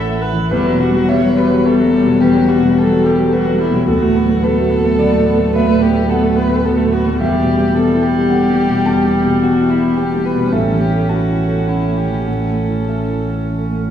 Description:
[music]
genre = neoclassical piano and strings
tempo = 107 BPM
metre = 3/4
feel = rubato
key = E dorian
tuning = A4 = 444 Hz
[part]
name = dark violin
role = melody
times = 0.0-13.8 s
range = E4 to E5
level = -20 LUFS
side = left 1 dB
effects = none
[part]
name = dark grand piano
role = accompaniment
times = 0.0-13.9 s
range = D2 to A5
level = -14 LUFS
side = equal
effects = none
[part]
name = rich viola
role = accompaniment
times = 0.0-13.8 s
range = F#3 to B4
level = -21 LUFS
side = right 3 dB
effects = none
[part]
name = punchy sub bass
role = bass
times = 0.0-13.9 s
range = E1 to D2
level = -23 LUFS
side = equal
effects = none
[sound]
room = wet cathedral reverb, RT60 5.6 s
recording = in a vast, echoing space, studio reverb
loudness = -12 LUFS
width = side -9 dB against mid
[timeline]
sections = 0.5-13.9 A section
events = none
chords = 0.0 A; 0.5 Emadd9; 3.9 Bm7/D; 7.2 Emadd9; 10.5 A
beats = | 0.51 1.08 1.65 | 2.21 2.76 3.32 | 3.88 4.43 4.98 | 5.54 6.10 6.65 | 7.20 7.75 8.31 | 8.86 9.42 9.97 | 10.53 11.09 11.67 | 12.27 12.88 13.48

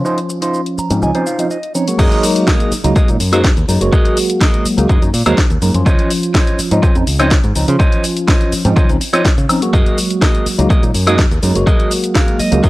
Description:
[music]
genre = filtered disco house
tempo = 124 BPM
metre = 4/4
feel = straight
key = unclear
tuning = A4 = 439 Hz
[part]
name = tine electric piano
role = accompaniment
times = 0.0-12.7 s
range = F3 to Gb4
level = -17 LUFS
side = equal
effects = medium stereo tremolo, phaser, vintage 12-bit sampler grit, sidechain pumping, low-pass filter
[part]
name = clean electric guitar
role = riff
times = 0.0-12.7 s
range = Eb4 to Bb5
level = -20 LUFS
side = right 1 dB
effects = sidechain pumping, low-pass filter
[part]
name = house drum kit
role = drums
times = 0.1-12.7 s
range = crash cymbal, hi-hat, shaker, snare drum, woodblock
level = -20 LUFS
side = left 1 dB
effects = overdrive, sidechain pumping on hats, sidechain pumping on perc, sidechain pumping on cymbals
[part]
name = modern bright fingered electric bass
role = bass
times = 0.8-12.7 s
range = Gb1 to Db3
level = -16 LUFS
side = equal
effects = sidechain pumping, low-pass filter
[part]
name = electronic kick drum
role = drums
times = 2.0-12.7 s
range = none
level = -13 LUFS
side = equal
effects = none
[sound]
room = little or no reverb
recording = dry, gritty hardware recording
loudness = -11 LUFS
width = side -18 dB against mid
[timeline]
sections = 0.0-2.0 A section; 2.0-12.7 B section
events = filter sweep 0.0-2.0; clean electric guitar fill 0.5-2.0, 12.2-12.7; drop 2.0-12.7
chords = 0.0 Dbmaj9; 2.0 Gb69; 5.9 Dbmaj9; 9.7 Gb69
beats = | 0.06 0.54 1.02 1.51 | 1.99 2.48 2.96 3.44 | 3.93 4.41 4.89 5.38 | 5.86 6.35 6.83 7.31 | 7.80 8.28 8.77 9.25 | 9.73 10.22 10.70 11.19 | 11.67 12.15 12.64

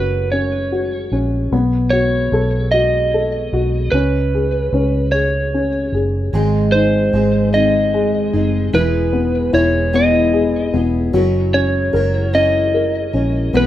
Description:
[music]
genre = six-eight pop ballad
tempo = 50 BPM (dotted quarters)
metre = 6/8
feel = straight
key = unclear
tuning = A4 = 439 Hz
[part]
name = electric slide guitar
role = melody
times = 0.0-13.7 s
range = B4 to D#5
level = -19 LUFS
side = right 1 dB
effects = ping-pong delay
[part]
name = dark upright piano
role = accompaniment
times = 0.0-13.7 s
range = E3 to A#4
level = -18 LUFS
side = left 2 dB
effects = none
[part]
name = vintage muted fingered electric bass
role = bass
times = 0.0-13.7 s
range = E1 to C#2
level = -20 LUFS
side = right 1 dB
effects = none
[part]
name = fingerpicked steel-string acoustic guitar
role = arpeggios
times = 6.3-13.7 s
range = G#2 to A#4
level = -22 LUFS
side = left 1 dB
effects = none
[sound]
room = moderate studio reverb, RT60 0.6 s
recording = rough home demo mix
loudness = -14 LUFS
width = side -12 dB against mid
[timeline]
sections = 0.0-13.7 A section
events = none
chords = 0.0 F#; 1.5 B7; 3.9 C#5; 6.3 G#; 8.7 E; 11.1 F#7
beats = 0.32 | 1.52 2.73 | 3.93 5.13 | 6.33 7.53 | 8.73 9.94 | 11.14 12.34 | 13.54

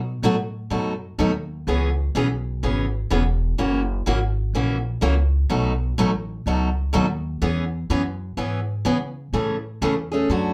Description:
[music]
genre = acoustic string swing (jazz manouche)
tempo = 125 BPM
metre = 4/4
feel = swing 63% on 8ths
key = E major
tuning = A4 = 440 Hz
[part]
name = upright bass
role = bass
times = 0.0-10.5 s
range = E1 to C#3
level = -26 LUFS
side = equal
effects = none
[part]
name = picked steel-string acoustic guitar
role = accompaniment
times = 0.2-10.5 s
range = B2 to G#4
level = -25 LUFS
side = equal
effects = none
[sound]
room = wet small room reverb, RT60 0.5 s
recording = heard from further back in the room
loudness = -23 LUFS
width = mono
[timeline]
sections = 0.0-9.3 A section; 9.3-10.5 A section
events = none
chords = 0.0 B7; 1.7 C#m7; 3.6 F#7; 5.5 B9; 7.4 E6; 9.3 Amaj7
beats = 0.23 0.71 1.19 | 1.67 2.15 2.63 3.11 | 3.59 4.07 4.55 5.03 | 5.50 5.98 6.46 6.94 | 7.42 7.90 8.38 8.86 | 9.34 9.82 10.30

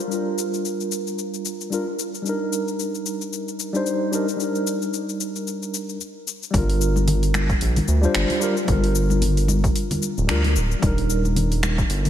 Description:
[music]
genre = sunset chillout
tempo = 112 BPM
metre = 4/4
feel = swing 57% on 16ths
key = unclear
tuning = A4 = 440 Hz
[part]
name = deep house drum kit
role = drums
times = 0.0-12.1 s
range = cabasa, finger snaps, hi-hat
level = -29 LUFS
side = left 3 dB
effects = overdrive
[part]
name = tine electric piano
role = accompaniment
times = 0.1-12.1 s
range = G3 to C5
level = -24 LUFS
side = equal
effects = medium tremolo, auto-pan, ping-pong delay, slapback echo
[part]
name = round analog bass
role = bass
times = 6.5-12.1 s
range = D1 to D2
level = -20 LUFS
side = equal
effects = none
[part]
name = electronic kick drum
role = drums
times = 6.5-11.9 s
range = none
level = -24 LUFS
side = equal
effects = overdrive
[part]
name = congas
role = percussion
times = 6.5-12.1 s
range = none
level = -28 LUFS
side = left 2 dB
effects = none
[sound]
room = moderate lush hall reverb, RT60 2.3 s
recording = big arena sound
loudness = -20 LUFS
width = side -10 dB against mid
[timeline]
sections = 0.0-6.5 A section; 6.5-12.1 B section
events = none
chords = 0.0 Gm7; 2.3 Ebmaj7; 6.5 Gm7; 10.8 Ebmaj7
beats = | 0.11 0.65 1.18 1.72 | 2.26 2.79 3.33 3.86 | 4.40 4.93 5.47 6.01 | 6.54 7.08 7.61 8.15 | 8.68 9.22 9.76 10.29 | 10.83 11.36 11.90

